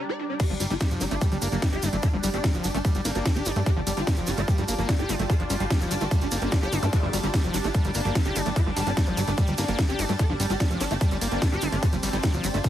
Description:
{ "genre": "psychedelic trance", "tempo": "147 BPM", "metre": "4/4", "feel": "straight", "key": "unclear", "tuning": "A4 = 439 Hz", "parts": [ { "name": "swarming rave lead", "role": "melody", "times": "0.0-12.7 s", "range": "G3 to D5", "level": "-32 LUFS", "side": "equal", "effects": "chorus, phaser, vintage 12-bit sampler grit, sidechain pumping, ping-pong delay" }, { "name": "bubbling stepped-filter texture", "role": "sustained chords", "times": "0.0-12.7 s", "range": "G3 to F4", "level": "-36 LUFS", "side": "right 1 dB", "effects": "chorus, built-in reverb, sidechain pumping" }, { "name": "airy breathy pad", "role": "texture", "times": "0.0-12.7 s", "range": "G4 to Bb5", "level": "-34 LUFS", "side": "equal", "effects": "chorus, phaser, sidechain pumping" }, { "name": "overdriven acid bass", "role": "riff", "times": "0.4-12.7 s", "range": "F3 to G4", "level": "-32 LUFS", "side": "equal", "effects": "auto-pan, sidechain pumping, dub echo" }, { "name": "electronic kick drum", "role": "drums", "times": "0.4-12.7 s", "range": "none", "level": "-23 LUFS", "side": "equal", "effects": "studio reverb" }, { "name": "techno drum kit", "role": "drums", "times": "0.4-12.7 s", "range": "crash cymbal, hi-hat, ride cymbal, snare drum", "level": "-33 LUFS", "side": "equal", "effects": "overdrive, studio reverb" }, { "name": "tube shaker", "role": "percussion", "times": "0.4-12.7 s", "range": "none", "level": "-36 LUFS", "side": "right 3 dB", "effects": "none" }, { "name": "plucky analog bass", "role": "bass", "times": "0.5-12.6 s", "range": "F1 to G2", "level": "-29 LUFS", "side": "equal", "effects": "none" }, { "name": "zap", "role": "sound effects", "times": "6.8-6.9 s", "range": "none", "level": "-37 LUFS", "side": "equal", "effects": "none" } ], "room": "little or no reverb", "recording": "heavily compressed radio sound", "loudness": "-22 LUFS", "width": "side -12 dB against mid", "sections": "0.4-12.7 A section", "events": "drop 0.4-12.7", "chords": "0.4 G5" }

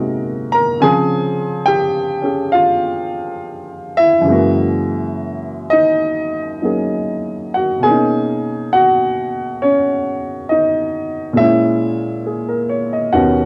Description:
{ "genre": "solo jazz", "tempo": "68 BPM", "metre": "4/4", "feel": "swing 67% on 8ths, rubato", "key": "unclear", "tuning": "A4 = 445 Hz", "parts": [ { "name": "warm baby grand piano", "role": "solo", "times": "0.0-13.5 s", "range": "D#2 to A#5", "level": "-17 LUFS", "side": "equal", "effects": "cassette tape" } ], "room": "light reverb", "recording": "home recording on cassette", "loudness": "-17 LUFS", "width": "mono", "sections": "0.0-13.5 A section", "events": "none", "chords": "0.0 G#13; 0.8 C#maj7; 4.3 F#13; 7.8 Bmaj9; 11.4 A#m7b5" }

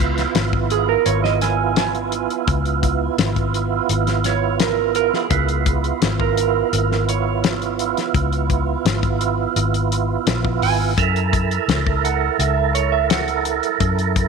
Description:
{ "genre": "straight-eighth soul blues", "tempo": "85 BPM", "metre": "4/4", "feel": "straight", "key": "unclear", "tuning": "A4 = 440 Hz", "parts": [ { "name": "percussive tonewheel organ", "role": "accompaniment", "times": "0.0-14.3 s", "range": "Cb4 to Bb4", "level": "-21 LUFS", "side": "right 13 dB", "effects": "slow rotary speaker, overdrive, chorus vibrato" }, { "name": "vintage muted fingered electric bass", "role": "bass", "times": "0.0-14.3 s", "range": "Ab1 to Gb2", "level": "-22 LUFS", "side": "left 2 dB", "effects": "none" }, { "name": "warm soul drum kit", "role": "drums", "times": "0.0-14.3 s", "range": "hi-hat, kick drum, snare drum", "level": "-22 LUFS", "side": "left 6 dB", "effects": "none" }, { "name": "clean lap steel guitar", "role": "second line", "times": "0.7-14.3 s", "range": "Ab4 to Ab5", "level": "-22 LUFS", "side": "right 11 dB", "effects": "none" } ], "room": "light reverb, studio ambience", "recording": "1960s-style stereo with parts hard left and right", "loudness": "-17 LUFS", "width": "side -5 dB against mid", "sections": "0.0-14.3 A section", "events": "electric slide guitar solo 0.0-14.3", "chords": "0.0 Db7#9; 11.0 Gb7#9" }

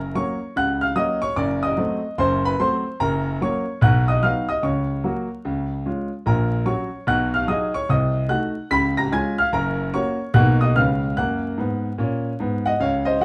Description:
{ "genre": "jazz, stride piano", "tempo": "147 BPM", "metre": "4/4", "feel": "swing 63% on 8ths", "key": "F# major", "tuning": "A4 = 440 Hz", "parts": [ { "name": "clear grand piano", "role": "solo", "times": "0.0-13.2 s", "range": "F#1 to B6", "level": "-22 LUFS", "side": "equal", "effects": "none" } ], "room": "moderate club reverb, RT60 0.6 s", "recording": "dark, warm production, vinyl crackle", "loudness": "-22 LUFS", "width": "mono", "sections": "0.0-12.8 A section", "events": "none", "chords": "0.0 F#; 1.4 F#dim7; 3.0 F#; 3.8 B; 4.6 F#/C#; 5.4 C#; 6.3 F#/A#; 7.1 B6; 7.9 Cdim7; 8.7 C#7; 9.5 F#; 10.3 Bmaj7; 10.8 C#7; 11.2 F#" }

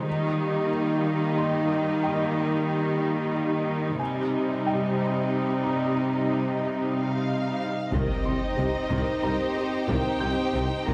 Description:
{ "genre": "cinematic, hybrid orchestral and electronic film score", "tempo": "61 BPM (dotted quarters)", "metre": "6/8", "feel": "straight", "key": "C minor", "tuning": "A4 = 440 Hz", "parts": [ { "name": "rich symphonic viola section", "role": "accompaniment", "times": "0.0-10.9 s", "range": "Eb3 to Eb4", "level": "-34 LUFS", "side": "equal", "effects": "none" }, { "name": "chorused pulse-width pad", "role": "sustained chords", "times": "0.0-10.9 s", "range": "G3 to Eb5", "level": "-31 LUFS", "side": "equal", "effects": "none" }, { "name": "rich symphonic cello section", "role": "bass", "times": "0.0-10.9 s", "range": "C3 to Eb3", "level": "-30 LUFS", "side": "equal", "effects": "none" }, { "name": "felt-muted upright piano", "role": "texture", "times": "0.0-10.9 s", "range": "F4 to G6", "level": "-40 LUFS", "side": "equal", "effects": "tape echo" }, { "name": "warm symphonic violin section", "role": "melody", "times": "6.9-10.9 s", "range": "Eb5 to Bb5", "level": "-36 LUFS", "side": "equal", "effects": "none" }, { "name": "rich symphonic violin section", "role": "second line", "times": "7.9-10.9 s", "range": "G4 to C5", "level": "-38 LUFS", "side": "equal", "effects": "none" }, { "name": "rich symphonic double bass section", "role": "bass", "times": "7.9-10.9 s", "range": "C2", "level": "-36 LUFS", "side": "equal", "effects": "none" }, { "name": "warm tuba", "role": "bass", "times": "7.9-10.9 s", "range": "C2", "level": "-36 LUFS", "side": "equal", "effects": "none" }, { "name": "taiko ensemble", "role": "drums", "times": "7.9-10.9 s", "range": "none", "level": "-36 LUFS", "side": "equal", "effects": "none" }, { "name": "impact", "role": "sound effects", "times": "7.9-9.9 s", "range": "none", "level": "-36 LUFS", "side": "equal", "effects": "none" }, { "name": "dark French horn section", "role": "sustained chords", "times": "8.6-10.7 s", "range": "C4 to G4", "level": "-38 LUFS", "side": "equal", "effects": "none" } ], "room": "light reverb", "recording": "close, detailed microphones", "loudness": "-26 LUFS", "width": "mono", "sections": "0.0-7.9 A section; 7.9-10.9 B section", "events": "build-up 0.0-7.9; impact 7.9-9.9", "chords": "0.1 Eb; 4.0 Cm" }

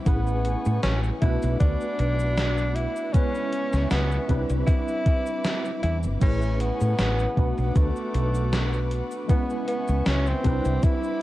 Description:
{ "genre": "vaporwave", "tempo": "78 BPM", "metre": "4/4", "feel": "swing 54% on 16ths", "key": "unclear", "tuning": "A4 = 438 Hz", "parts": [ { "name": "tine electric piano", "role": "accompaniment", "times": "0.0-11.2 s", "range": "G3 to B4", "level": "-30 LUFS", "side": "equal", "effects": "overdrive, fast stereo tremolo, ensemble chorus" }, { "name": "dark chamber string section", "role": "sustained chords", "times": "0.0-11.2 s", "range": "C4 to D6", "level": "-38 LUFS", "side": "left 1 dB", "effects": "none" }, { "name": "warm tenor saxophone", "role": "melody", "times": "0.1-11.2 s", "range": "A3 to E4", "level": "-29 LUFS", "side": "equal", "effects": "tape echo" }, { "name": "woody fretless electric bass", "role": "bass", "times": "0.1-10.8 s", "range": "G1 to A2", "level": "-25 LUFS", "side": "equal", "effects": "tube saturation, wide subtle chorus" }, { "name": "electronic kick drum", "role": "drums", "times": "0.1-11.0 s", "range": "none", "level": "-21 LUFS", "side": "equal", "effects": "overdrive" }, { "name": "gated 80s digital drum machine", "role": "drums", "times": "0.1-11.2 s", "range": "cabasa, crash cymbal, hi-hat, snare drum", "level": "-30 LUFS", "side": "equal", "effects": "gated reverb, gated reverb snare, overdrive" } ], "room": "little or no reverb", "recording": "cassette tape", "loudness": "-22 LUFS", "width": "side -16 dB against mid", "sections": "0.0-11.2 A section", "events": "none", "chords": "0.1 Amaj9; 1.2 Bm7; 3.1 C#m7; 4.3 Cmaj9; 6.2 Amaj9; 7.4 Bm7; 9.3 C#m7; 10.5 Cmaj9" }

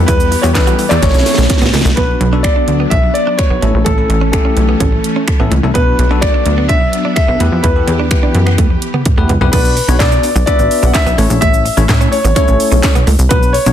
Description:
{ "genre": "dance-pop", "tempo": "127 BPM", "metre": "4/4", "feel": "straight", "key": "B minor", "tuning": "A4 = 440 Hz", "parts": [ { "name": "bell-like tine electric piano", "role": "accompaniment", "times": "0.0-13.7 s", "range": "F#3 to E5", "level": "-20 LUFS", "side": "left 6 dB", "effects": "auto-pan, sidechain pumping" }, { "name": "string machine, violas", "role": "sustained chords", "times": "0.0-9.5 s", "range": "E3 to G4", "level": "-21 LUFS", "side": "left 1 dB", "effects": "ensemble chorus, sidechain pumping" }, { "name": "plucky analog bass", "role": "bass", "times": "0.0-13.7 s", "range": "A1 to E3", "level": "-13 LUFS", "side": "equal", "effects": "sidechain pumping" }, { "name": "warm concert grand piano", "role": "melody", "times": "0.1-13.7 s", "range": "A4 to F#5", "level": "-17 LUFS", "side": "left 1 dB", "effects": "tape echo" }, { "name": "direct-recorded clean electric guitar", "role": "riff", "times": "0.1-13.7 s", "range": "A3 to F#4", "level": "-22 LUFS", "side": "right 6 dB", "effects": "lush chorus" }, { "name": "house drum kit", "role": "drums", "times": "0.1-13.7 s", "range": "crash cymbal, finger snaps, handclaps, hi-hat, kick drum, shaker, snare drum, toms", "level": "-14 LUFS", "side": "equal", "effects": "overdrive" } ], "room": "little or no reverb", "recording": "dense, heavily limited modern master", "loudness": "-10 LUFS", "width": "side -10 dB against mid", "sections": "0.0-2.0 A section; 2.0-9.5 B section; 9.5-13.7 A section", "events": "drum fill 1.0-2.0, 8.6-9.5", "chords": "0.0 Em; 1.0 A; 2.0 Bm; 3.6 A; 5.8 Bm; 7.4 Em; 9.5 Bm; 11.2 A" }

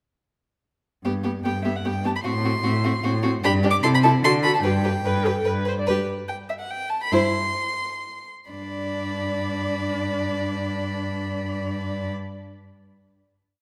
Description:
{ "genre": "quick classical-period movement for string quartet", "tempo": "119-152 BPM", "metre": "3/4", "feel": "straight", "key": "G major", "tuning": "A4 = 439 Hz", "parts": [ { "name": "clear violin", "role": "second line", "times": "1.0-12.1 s", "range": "F#4 to D5", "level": "-32 LUFS", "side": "equal", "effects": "none" }, { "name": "rich cello", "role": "bass", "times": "1.0-12.1 s", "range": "G2 to D3", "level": "-28 LUFS", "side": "equal", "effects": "none" }, { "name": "rich viola", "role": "accompaniment", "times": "1.1-12.1 s", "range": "B3 to D5", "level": "-30 LUFS", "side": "equal", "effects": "none" }, { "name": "dark violin", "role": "melody", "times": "1.4-12.1 s", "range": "E5 to D6", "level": "-29 LUFS", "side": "equal", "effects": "none" } ], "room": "moderate scoring stage reverb, RT60 1.9 s", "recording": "none", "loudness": "-24 LUFS", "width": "mono", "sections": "1.1-5.9 A section; 5.9-8.5 coda; 8.5-11.5 final chord", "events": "slowing down 5.3-8.5", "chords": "1.1 G; 2.3 F#dim/A; 3.4 G5; 3.8 Am/C; 4.2 D; 4.6 G; 7.1 C/G; 8.5 G" }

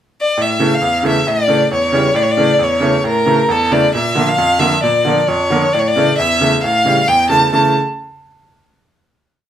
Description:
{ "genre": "klezmer", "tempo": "134 BPM", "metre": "4/4", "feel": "straight", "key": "A phrygian dominant", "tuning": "A4 = 444 Hz", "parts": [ { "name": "clear violin", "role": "melody", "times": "0.2-7.7 s", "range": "A4 to A5", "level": "-14 LUFS", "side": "left 1 dB", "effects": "none" }, { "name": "bright upright piano", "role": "accompaniment", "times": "0.4-7.7 s", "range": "E2 to Bb3", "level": "-16 LUFS", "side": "right 1 dB", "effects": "none" } ], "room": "wet studio reverb, RT60 0.6 s", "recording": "heard from further back in the room", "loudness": "-12 LUFS", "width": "side -10 dB against mid", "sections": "0.0-0.4 pickup bar; 0.4-7.5 A section; 7.5-9.3 final chord", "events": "none", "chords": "0.4 A; 4.0 Bb; 5.7 A" }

